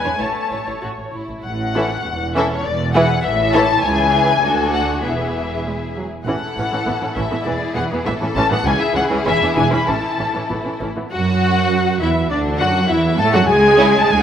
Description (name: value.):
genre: quick classical-period movement for string orchestra.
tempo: 100 BPM.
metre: 2/4.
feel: straight.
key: A major.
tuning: A4 = 441 Hz.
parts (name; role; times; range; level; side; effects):
muted symphonic violin section; melody; 0.0-14.2 s; C#5 to B5; -20 LUFS; left 4 dB; none.
muted symphonic violin section; second line; 0.0-13.9 s; C#4 to C#5; -23 LUFS; left 2 dB; none.
muted symphonic viola section; accompaniment; 0.0-14.2 s; E3 to C#5; -21 LUFS; right 1 dB; none.
muted studio cello section; bass; 0.0-14.2 s; C#2 to A3; -24 LUFS; right 3 dB; none.
muted symphonic double bass section; bass; 0.1-14.2 s; E1 to A2; -24 LUFS; right 3 dB; none.
room: wet concert hall reverb, RT60 2.3 s.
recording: none.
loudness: -15 LUFS.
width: side -9 dB against mid.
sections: 0.0-1.4 A section; 1.4-11.1 A section; 11.1-14.2 B section.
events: none.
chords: 0.2 A; 2.7 E7; 3.2 A; 3.8 C#m; 4.4 D; 5.0 E; 6.3 A; 7.5 E7; 8.1 A; 8.7 C#m; 9.3 E7; 9.9 A; 11.1 Esus2; 12.3 D; 12.9 A5/E; 13.5 C#m.